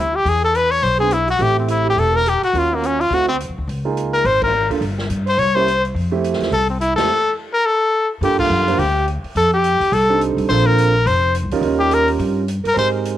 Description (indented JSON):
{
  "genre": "jazz, small-group swing and bop",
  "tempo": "211 BPM",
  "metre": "4/4",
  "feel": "swing 60% on 8ths",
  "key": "F major",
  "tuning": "A4 = 438 Hz",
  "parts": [
    { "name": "brilliant trumpet", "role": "melody", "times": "0.0-12.9 s", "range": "Bb3 to Db5", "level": "-17 LUFS", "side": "left 2 dB", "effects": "cassette tape" },
    { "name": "warm alto saxophone", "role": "second line", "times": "0.0-12.9 s", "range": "Bb3 to Db5", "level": "-26 LUFS", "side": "right 9 dB", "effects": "none" },
    { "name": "upright bass", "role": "bass", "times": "0.0-13.2 s", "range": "E1 to Ab2", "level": "-21 LUFS", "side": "left 1 dB", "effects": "none" },
    { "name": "swinging big-band drum kit", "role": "drums", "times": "0.3-13.1 s", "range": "crash cymbal, hi-hat, kick drum, ride cymbal, snare drum", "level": "-32 LUFS", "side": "left 1 dB", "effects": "cassette tape" },
    { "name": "warm concert grand piano", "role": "accompaniment", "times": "1.0-13.2 s", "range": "G3 to C5", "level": "-21 LUFS", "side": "right 7 dB", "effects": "cassette tape" }
  ],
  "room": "light reverb, small room ambience",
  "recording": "home recording on cassette",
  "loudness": "-15 LUFS",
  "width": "side -12 dB against mid",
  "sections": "0.0-8.2 A section; 8.2-13.2 B section",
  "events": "band accent 4.4, 6.9, 8.4",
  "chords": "0.3 E(b13); 1.4 Am7; 2.5 Ebm9; 3.1 D9; 3.7 Db69; 4.8 Gsus4; 5.4 C7b9; 5.9 Fmaj7; 8.2 Gm7; 9.4 F13; 10.5 Bbmaj9; 11.6 Eb9",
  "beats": "| 0.26 0.55 0.83 1.11 | 1.40 1.68 1.97 2.25 | 2.54 2.82 3.10 3.39 | 3.67 3.96 4.24 4.53 | 4.81 5.10 5.38 5.66 | 5.95 6.23 6.52 6.80 | 7.09 7.37 7.66 7.94 | 8.22 8.51 8.79 9.07 | 9.36 9.64 9.93 10.21 | 10.49 10.78 11.06 11.35 | 11.63 11.91 12.20 12.48 | 12.76 13.05"
}